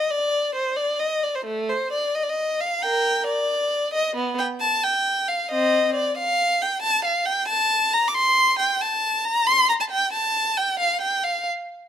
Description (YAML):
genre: classical, baroque-style suite movement for unaccompanied violin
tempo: 90 BPM (dotted quarters)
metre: 12/8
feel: rubato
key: unclear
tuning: A4 = 440 Hz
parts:
  - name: rich violin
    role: solo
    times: 0.0-11.5 s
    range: A3 to D6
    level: -20 LUFS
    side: equal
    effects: none
room: moderate stone room reverb, RT60 1.0 s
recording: none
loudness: -20 LUFS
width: side -9 dB against mid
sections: 0.0-11.9 A section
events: none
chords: none